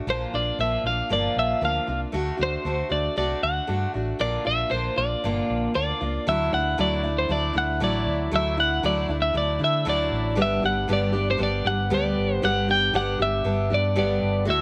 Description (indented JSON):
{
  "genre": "folk rock and heartland rock",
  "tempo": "117 BPM",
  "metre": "4/4",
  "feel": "straight",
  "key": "D mixolydian",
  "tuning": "A4 = 440 Hz",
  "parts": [
    { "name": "picked steel-string acoustic guitar", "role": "accompaniment", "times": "0.0-14.6 s", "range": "G2 to G4", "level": "-29 LUFS", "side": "equal", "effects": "none" },
    { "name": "twelve-string electric guitar", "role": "melody", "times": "0.1-14.6 s", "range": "C5 to G5", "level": "-27 LUFS", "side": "equal", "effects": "none" },
    { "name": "hollow-body short-scale fingered electric bass", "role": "bass", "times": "0.1-14.6 s", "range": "G1 to D3", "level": "-31 LUFS", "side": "equal", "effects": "none" }
  ],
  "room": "light reverb",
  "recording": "none",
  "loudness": "-24 LUFS",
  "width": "mono",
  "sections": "0.0-6.3 A section; 6.3-14.6 B section",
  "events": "none",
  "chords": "0.1 Bb; 2.1 D; 4.2 Bb; 6.3 Dadd9; 10.4 G"
}